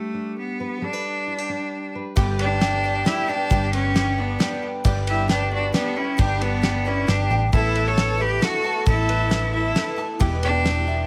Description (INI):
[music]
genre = indie folk with a building arrangement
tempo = 134 BPM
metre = 3/4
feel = straight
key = unclear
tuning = A4 = 439 Hz
[part]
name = bright cello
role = melody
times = 0.0-11.1 s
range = A3 to A4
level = -27 LUFS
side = equal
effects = none
[part]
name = fingerpicked steel-string acoustic guitar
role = accompaniment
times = 0.0-3.5 s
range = G3 to B4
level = -35 LUFS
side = equal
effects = none
[part]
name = bright upright piano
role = accompaniment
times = 2.2-11.1 s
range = G1 to E5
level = -39 LUFS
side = equal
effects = none
[part]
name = picked twelve-string acoustic guitar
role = accompaniment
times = 2.2-11.1 s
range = E2 to G4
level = -34 LUFS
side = equal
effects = ensemble chorus
[part]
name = mellow brass ensemble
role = sustained chords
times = 2.2-11.1 s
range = B2 to B4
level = -40 LUFS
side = equal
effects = none
[part]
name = tenor ukulele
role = arpeggios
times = 2.2-11.1 s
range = G4 to A5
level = -33 LUFS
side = equal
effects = none
[part]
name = hollow-body short-scale fingered electric bass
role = bass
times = 2.2-11.1 s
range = E1 to A1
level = -26 LUFS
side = equal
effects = none
[part]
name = cloth-damped thuddy drum kit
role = drums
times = 2.2-10.8 s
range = kick drum, ride cymbal, snare drum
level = -26 LUFS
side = equal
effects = none
[part]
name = warm fiddle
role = second line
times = 2.4-11.1 s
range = D4 to C#5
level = -32 LUFS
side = equal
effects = none
[sound]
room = light reverb, studio ambience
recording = none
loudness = -22 LUFS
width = mono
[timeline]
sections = 0.0-2.2 A section; 2.2-11.1 B section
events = none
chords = 0.0 G; 7.5 Asus2; 10.2 Em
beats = 0.36 | 0.82 1.27 1.72 | 2.17 2.62 3.06 | 3.51 3.96 4.40 | 4.85 5.30 5.74 | 6.19 6.63 7.08 | 7.53 7.97 8.42 | 8.87 9.31 9.76 | 10.21 10.65